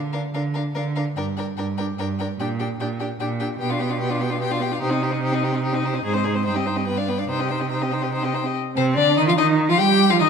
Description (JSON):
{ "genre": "quick classical-period movement for string quartet", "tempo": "146 BPM", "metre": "3/4", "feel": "straight", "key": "C minor from 3.6 s", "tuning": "A4 = 439 Hz", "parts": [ { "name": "rich cello", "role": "bass", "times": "0.0-10.3 s", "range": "G2 to G3", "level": "-24 LUFS", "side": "right 5 dB", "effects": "none" }, { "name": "rich violin", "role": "melody", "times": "0.1-10.3 s", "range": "C5 to G5", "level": "-26 LUFS", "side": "left 10 dB", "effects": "none" }, { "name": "rich violin", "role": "second line", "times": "0.1-10.3 s", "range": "C4 to D5", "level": "-27 LUFS", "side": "left 4 dB", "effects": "none" }, { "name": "dark viola", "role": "accompaniment", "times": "0.1-10.3 s", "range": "B3 to G4", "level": "-26 LUFS", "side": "right 2 dB", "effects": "none" } ], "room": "wet scoring stage reverb, RT60 1.6 s", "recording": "none", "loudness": "-20 LUFS", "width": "side -6 dB against mid", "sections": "0.0-8.6 A section; 8.6-10.3 B section", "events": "none", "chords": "0.0 Bb/D; 1.2 Gm; 2.4 Gm/Bb; 3.6 G7/B; 4.8 Cm; 6.0 Ab; 6.5 Cm/G; 6.9 G7; 7.3 Cm" }